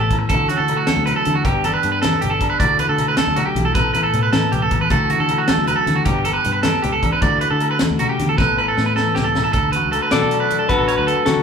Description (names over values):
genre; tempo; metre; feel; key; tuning
highlife guitar band; 104 BPM (dotted quarters); 12/8; straight; D major; A4 = 440 Hz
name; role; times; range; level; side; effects
clean electric guitar; accompaniment; 0.0-11.4 s; G2 to A4; -24 LUFS; left 4 dB; none
electric guitar at the edge of break-up; arpeggios; 0.0-11.3 s; F#4 to D5; -19 LUFS; right 4 dB; spring reverb
fingered electric bass; bass; 0.0-11.4 s; G1 to D3; -24 LUFS; equal; none
tight funk drum kit; drums; 0.1-11.4 s; hi-hat, kick drum, snare drum; -23 LUFS; equal; none
agogo bells; percussion; 0.1-11.4 s; none; -30 LUFS; left 7 dB; none
congas; percussion; 0.1-11.4 s; none; -26 LUFS; left 1 dB; none
clean electric guitar; melody; 10.1-11.4 s; F#4 to D5; -18 LUFS; left 5 dB; none
room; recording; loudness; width
moderate large studio reverb, RT60 0.9 s; band playing live in one room; -15 LUFS; side -6 dB against mid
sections
0.0-9.5 A section; 9.5-11.4 B section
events
drum fill 8.4-9.5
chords
0.3 Dadd9; 1.5 G; 2.6 Dadd9; 3.8 Asus2; 4.9 Dadd9; 6.1 G; 7.2 Dadd9; 8.4 Asus2; 9.5 Bmadd9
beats
| 0.30 0.88 1.46 2.03 | 2.61 3.19 3.76 4.34 | 4.92 5.49 6.07 6.65 | 7.23 7.80 8.38 8.96 | 9.54 10.12 10.70 11.27